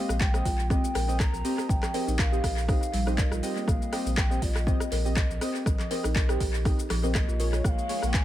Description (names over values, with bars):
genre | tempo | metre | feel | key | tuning
afro house | 121 BPM | 4/4 | swing 54% on 16ths | Bb dorian | A4 = 439 Hz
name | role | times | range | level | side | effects
hollow bass bansuri | melody | 0.0-8.2 s | Eb5 to Bb5 | -36 LUFS | equal | tape echo
deep mellow chord stab | stabs | 0.0-8.1 s | Bb3 to Eb5 | -34 LUFS | right 1 dB | analog chorus, sidechain pumping, tape echo
warm sub bass | bass | 0.1-8.2 s | Bb1 | -29 LUFS | equal | sidechain pumping
deep house drum kit | drums | 0.1-8.2 s | handclaps, hi-hat, rim click, shaker | -33 LUFS | equal | overdrive, small room ambience, tape echo
electronic kick drum | drums | 0.2-8.2 s | none | -26 LUFS | equal | overdrive, small room ambience
kalimba | arpeggios | 0.5-7.8 s | F3 to Bb4 | -34 LUFS | equal | sidechain pumping, tape echo
clear studio string section | sustained chords | 7.6-8.2 s | Ab3 to Db4 | -38 LUFS | left 4 dB | stereo widening, sidechain pumping
room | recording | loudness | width
light reverb, small room ambience | echo-heavy mix | -24 LUFS | side -13 dB against mid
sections
0.0-8.2 A section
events
none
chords
0.0 Bbm7